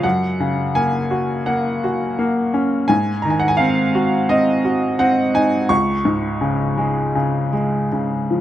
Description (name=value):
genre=classical, lyrical solo piano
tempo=84 BPM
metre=4/4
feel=rubato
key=Db major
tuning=A4 = 440 Hz
part: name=bright upright piano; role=solo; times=0.0-8.4 s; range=Db2 to Db6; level=-16 LUFS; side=equal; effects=none
room=light reverb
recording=close, detailed microphones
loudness=-16 LUFS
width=side -12 dB against mid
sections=0.0-8.4 A section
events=none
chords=0.0 Gb; 2.9 Ab7; 5.7 Db5